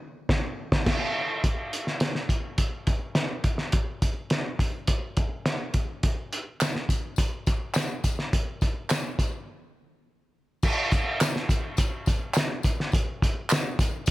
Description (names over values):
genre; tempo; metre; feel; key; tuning
soul; 104 BPM; 4/4; straight; none; none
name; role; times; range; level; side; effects
cloth-damped thuddy drum kit; drums; 0.3-14.1 s; crash cymbal, hi-hat, kick drum, snare drum; -24 LUFS; equal; none
handclaps and tambourine; percussion; 6.6-14.1 s; none; -32 LUFS; right 1 dB; none
room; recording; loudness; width
little or no reverb; none; -24 LUFS; side -17 dB against mid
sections
0.0-1.4 A section; 1.4-10.6 B section; 10.6-14.1 C section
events
band accent 0.0-1.4; break 9.5-10.6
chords
none